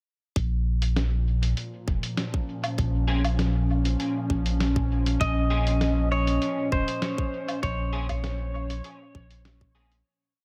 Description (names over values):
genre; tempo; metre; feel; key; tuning
ambient dub; 99 BPM; 4/4; straight; Bb minor; A4 = 440 Hz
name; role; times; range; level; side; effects
airy breathy pad; sustained chords; 0.7-10.1 s; Bb2 to Db4; -32 LUFS; equal; chorus
warm sub bass; bass; 0.4-10.0 s; F1 to Bb1; -28 LUFS; equal; none
electronic kick drum; drums; 0.4-9.7 s; none; -30 LUFS; equal; none
lo-fi sampler-style drum kit; drums; 0.4-10.0 s; hi-hat, snare drum, woodblock; -35 LUFS; equal; dub echo
electric guitar at the edge of break-up; stabs; 3.1-10.0 s; Bb3 to Ab4; -40 LUFS; equal; analog chorus, dub echo
clean lap steel guitar; melody; 5.2-9.4 s; C5 to Eb5; -33 LUFS; equal; dub echo
room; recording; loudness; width
moderate scoring stage reverb, RT60 1.8 s, digital ambience; none; -26 LUFS; mono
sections
0.4-10.1 groove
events
fade-out 6.8-10.1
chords
0.4 Bbm